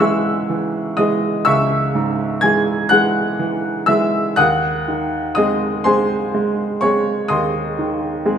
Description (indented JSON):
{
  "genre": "classical, romantic nocturne for solo piano",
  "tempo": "41 BPM (dotted quarters)",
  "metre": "12/8",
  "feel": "rubato",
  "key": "C# minor",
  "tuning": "A4 = 439 Hz",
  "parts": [
    { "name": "clear upright piano", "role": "solo", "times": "0.0-8.4 s", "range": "C#2 to G#6", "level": "-15 LUFS", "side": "equal", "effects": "none" }
  ],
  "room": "moderate recital hall reverb, RT60 1.6 s",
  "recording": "none",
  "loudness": "-15 LUFS",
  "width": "side -8 dB against mid",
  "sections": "0.0-8.4 A section",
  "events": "none",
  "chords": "0.0 C#m; 4.4 G#7/D#"
}